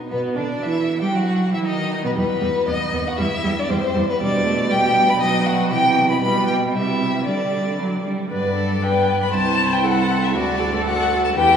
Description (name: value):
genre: quick classical-period movement for string quartet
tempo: 118 BPM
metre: 2/4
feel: straight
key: E minor, G major from 4.2 s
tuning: A4 = 440 Hz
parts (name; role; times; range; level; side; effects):
- rich violin; second line; 0.0-11.6 s; B3 to B5; -22 LUFS; left 1 dB; none
- rich violin; melody; 0.1-11.6 s; B3 to B5; -24 LUFS; left 4 dB; none
- clear viola; accompaniment; 0.1-11.6 s; E3 to C5; -24 LUFS; right 2 dB; none
- rich cello; bass; 0.1-11.6 s; C2 to G3; -23 LUFS; right 2 dB; none
room: wet cathedral reverb, RT60 5.1 s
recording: recorded in a church or concert hall, small room ambience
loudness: -17 LUFS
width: side -7 dB against mid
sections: 0.1-8.3 A section; 8.3-11.6 B section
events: none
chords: 0.1 Bm; 0.6 Em; 1.1 B; 2.2 Em; 2.7 B/D#; 3.2 Em; 4.2 G/B; 5.2 B; 5.7 C; 6.2 G/B; 6.7 C; 7.3 G5/D; 7.8 D; 8.3 G; 9.3 Am/C; 10.4 D